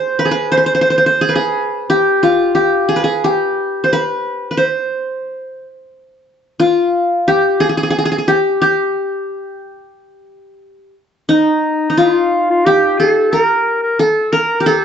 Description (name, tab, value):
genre	Turkish makam ensemble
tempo	89 BPM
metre	4/4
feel	straight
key	G makam hicaz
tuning	A4 = 441 Hz
part	qanun	melody	0.0-14.8 s	Eb4 to C5	-13 LUFS	equal	none
part	clear clarinet	second line	11.3-14.8 s	Eb4 to Bb4	-16 LUFS	left 1 dB	none
room	moderate studio reverb, RT60 0.7 s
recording	dark, warm production, nothing above 8.0 kHz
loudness	-12 LUFS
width	side -8 dB against mid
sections	0.0-11.3 A section; 11.3-14.8 B section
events	none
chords	none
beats	| 0.53 1.21 1.88 2.56 | 3.23 3.91 4.58 5.25 | 5.93 6.60 7.27 7.95 | 8.62 9.29 9.96 10.63 | 11.30 11.97 12.65 13.32 | 13.99 14.66